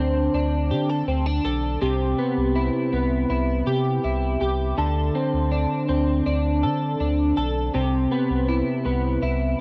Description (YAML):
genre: dream pop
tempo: 81 BPM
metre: 4/4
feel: straight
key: C major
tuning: A4 = 441 Hz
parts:
  - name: twelve-string electric guitar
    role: arpeggios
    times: 0.0-9.6 s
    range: C3 to A4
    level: -24 LUFS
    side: equal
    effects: analog chorus, cassette tape, analog delay
  - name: warm sub bass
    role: bass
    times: 0.0-9.6 s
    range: B1 to D3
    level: -27 LUFS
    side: equal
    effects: none
room: light reverb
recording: home recording on cassette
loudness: -23 LUFS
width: mono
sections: 0.0-9.6 A section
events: none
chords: 0.0 D5; 1.8 Cmaj7; 4.8 D5; 7.7 Cmaj7